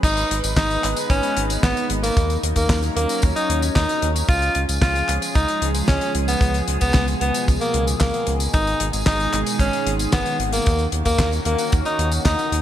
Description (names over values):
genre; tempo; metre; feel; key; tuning
italo disco; 113 BPM; 4/4; straight; G# dorian; A4 = 440 Hz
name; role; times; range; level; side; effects
edgy alto saxophone; melody; 0.0-12.6 s; A#3 to E#4; -22 LUFS; equal; digital delay
lush unison pad; sustained chords; 0.0-12.6 s; B2 to B4; -27 LUFS; right 1 dB; chorus, phaser
round analog bass; bass; 0.0-12.6 s; G#1 to D#2; -23 LUFS; equal; none
damped 70s drum kit; drums; 0.0-12.6 s; crash cymbal, handclaps, hi-hat, snare drum, tambourine; -25 LUFS; left 1 dB; none
kick drum; drums; 0.0-12.4 s; none; -20 LUFS; equal; none
room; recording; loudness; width
moderate lush hall reverb, RT60 2.6 s; bright 1980s-style digital production; -18 LUFS; side -11 dB against mid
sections
0.0-12.6 A section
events
none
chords
0.0 G#m; 2.2 D#m7; 4.3 C#; 8.5 G#m; 10.7 D#m7